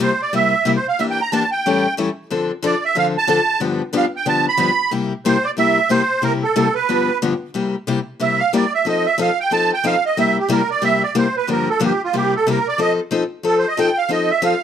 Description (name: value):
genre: jazz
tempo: 183 BPM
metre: 4/4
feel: swing 59% on 8ths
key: C mixolydian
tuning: A4 = 440 Hz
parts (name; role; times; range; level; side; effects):
- musette accordion; melody; 0.0-14.6 s; F4 to B5; -17 LUFS; right 5 dB; none
- picked steel-string acoustic guitar; accompaniment; 0.0-14.5 s; G2 to A4; -19 LUFS; left 4 dB; none
room: light reverb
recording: close, detailed microphones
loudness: -16 LUFS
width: side -9 dB against mid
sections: 0.0-7.5 A section; 7.5-14.6 B section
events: accordion solo 7.5-14.6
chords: 0.0 C7; 1.0 Em7b5; 1.6 A7; 2.3 Dm7; 3.6 G7; 4.9 C7; 6.9 G7; 7.5 C7; 8.9 F7; 10.2 C7; 11.5 Gm7; 12.1 C7; 12.8 F7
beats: 0.00 0.33 0.66 | 0.99 1.31 1.64 1.97 | 2.30 2.63 2.96 3.28 | 3.61 3.94 4.27 4.59 | 4.92 5.25 5.58 5.91 | 6.23 6.56 6.89 7.22 | 7.54 7.87 8.20 8.53 | 8.86 9.19 9.51 9.84 | 10.17 10.50 10.82 11.15 | 11.48 11.81 12.14 12.47 | 12.79 13.12 13.45 13.78 | 14.11 14.44